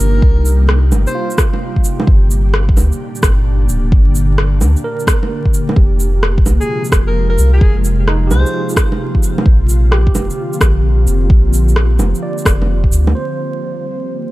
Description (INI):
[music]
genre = future garage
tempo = 130 BPM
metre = 4/4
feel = swing 66% on 16ths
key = F dorian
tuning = A4 = 440 Hz
[part]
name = breathy alto saxophone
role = melody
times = 0.0-1.4, 6.6-8.7 s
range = Ab4 to C5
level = -24 LUFS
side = left 2 dB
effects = tape echo
[part]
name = overdriven tine electric piano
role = accompaniment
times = 0.0-14.3 s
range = Eb4 to D5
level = -25 LUFS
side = right 5 dB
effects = fast tremolo, vintage 12-bit sampler grit, sidechain pumping, low-pass filter, analog delay
[part]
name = ethereal airy pad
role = sustained chords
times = 0.0-14.3 s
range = Bb2 to G4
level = -22 LUFS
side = left 1 dB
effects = ensemble chorus, built-in reverb, sidechain pumping
[part]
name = warm sub bass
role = bass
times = 0.0-13.1 s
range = D1 to D2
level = -13 LUFS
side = equal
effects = sidechain pumping
[part]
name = electronic kick drum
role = drums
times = 0.2-12.9 s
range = none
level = -12 LUFS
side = equal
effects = none
[part]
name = electronic shaker, rim click and bongos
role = drums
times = 0.5-13.1 s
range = none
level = -18 LUFS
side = right 1 dB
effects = low-pass filter on perc, low-pass filter on snare, low-pass filter on room
[sound]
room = little or no reverb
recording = vinyl crackle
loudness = -11 LUFS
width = side -18 dB against mid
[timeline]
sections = 0.0-13.1 A section; 13.1-14.3 B section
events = filter sweep on drum 13.1-14.3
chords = 0.0 Cm7; 2.1 Gm; 5.8 Fmadd9; 9.5 Bbadd9; 13.1 Cm7